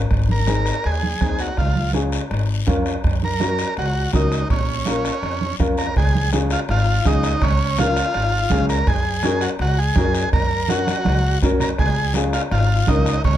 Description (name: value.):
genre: latin, cumbia.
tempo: 165 BPM.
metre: 4/4.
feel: straight.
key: unclear.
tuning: A4 = 440 Hz.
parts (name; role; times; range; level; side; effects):
upright bass; bass; 0.0-13.4 s; Ab1 to Gb2; -21 LUFS; equal; none.
bombo; percussion; 0.1-13.4 s; none; -23 LUFS; right 1 dB; none.
congas; percussion; 0.1-13.4 s; none; -26 LUFS; right 4 dB; none.
guiro; percussion; 0.1-13.4 s; none; -34 LUFS; left 8 dB; none.
combo organ; melody; 0.3-13.4 s; Db4 to Bb4; -23 LUFS; right 1 dB; none.
warm upright piano; accompaniment; 0.5-13.1 s; C4 to Bb4; -24 LUFS; left 2 dB; none.
room: moderate studio ambience, RT60 0.5 s.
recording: none.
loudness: -17 LUFS.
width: side -12 dB against mid.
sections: 0.0-6.0 A section; 6.0-13.4 B section.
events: drum fill 10.7-11.8.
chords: 0.1 Ab; 1.6 Db; 3.0 Gb; 4.5 Bbm; 6.0 Db; 8.9 Gb; 11.8 Db.